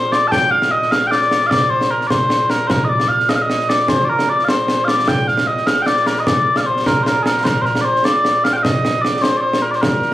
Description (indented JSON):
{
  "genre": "scottish traditional, Scottish pipe music",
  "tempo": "101 BPM (dotted quarters)",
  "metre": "6/8",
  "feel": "straight",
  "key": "Bb major",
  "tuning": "A4 = 445 Hz",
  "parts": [
    { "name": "mellow small bagpipes", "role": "melody", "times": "0.0-10.1 s", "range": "Bb2 to A5", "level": "-15 LUFS", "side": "equal", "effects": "none" },
    { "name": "concert snare drum and concert bass drum", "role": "drums", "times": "0.1-10.1 s", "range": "none", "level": "-19 LUFS", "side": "equal", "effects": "none" }
  ],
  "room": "light reverb",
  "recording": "recorded on a phone in the room, studio reverb",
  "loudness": "-14 LUFS",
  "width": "side -14 dB against mid",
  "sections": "0.0-7.5 A section; 7.5-10.1 B section",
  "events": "none",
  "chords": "none"
}